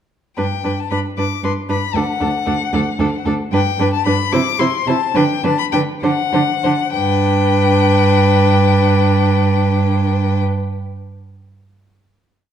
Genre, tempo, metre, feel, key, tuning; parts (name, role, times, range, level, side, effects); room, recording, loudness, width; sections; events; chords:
quick classical-period movement for string quartet; 64-78 BPM (dotted quarters); 6/8; rubato; G major; A4 = 440 Hz
rich violin; melody; 0.4-10.4 s; F#5 to D6; -20 LUFS; left 10 dB
warm violin; second line; 0.4-10.4 s; A4 to C5; -22 LUFS; left 3 dB
dark viola; accompaniment; 0.4-10.4 s; D4 to E4; -22 LUFS; right 2 dB
rich cello; bass; 0.4-10.4 s; D2 to D3; -17 LUFS; right 4 dB
wet recital hall reverb, RT60 1.4 s; dark, warm production; -14 LUFS; side -9 dB against mid
0.4-7.0 A section; 7.0-10.6 final chord
slowing down 2.7-7.0
0.4 G; 2.0 D; 3.5 G; 4.3 C; 5.2 G